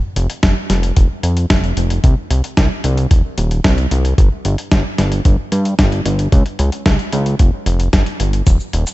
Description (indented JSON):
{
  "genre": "italo disco",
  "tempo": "112 BPM",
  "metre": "4/4",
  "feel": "straight",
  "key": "unclear",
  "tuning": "A4 = 440 Hz",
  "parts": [
    { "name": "fat analog bass", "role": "bass", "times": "0.2-8.8 s", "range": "Eb1 to G2", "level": "-16 LUFS", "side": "equal", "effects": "digital delay" },
    { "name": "dusty soul sampler-style drum kit", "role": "drums", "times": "0.2-8.9 s", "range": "cabasa, hi-hat, snare drum", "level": "-20 LUFS", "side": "equal", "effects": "small room ambience" },
    { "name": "electronic kick drum", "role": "drums", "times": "0.4-8.6 s", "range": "none", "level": "-12 LUFS", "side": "equal", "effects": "small room ambience" }
  ],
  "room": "little or no reverb",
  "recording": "dark, warm production, nothing above 8.0 kHz",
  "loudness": "-13 LUFS",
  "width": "side -18 dB against mid",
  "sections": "0.0-8.9 A section",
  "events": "none",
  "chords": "none",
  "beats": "0.43 0.97 1.50 | 2.04 2.57 3.11 3.65 | 4.18 4.72 5.25 5.79 | 6.32 6.86 7.40 7.93 | 8.47"
}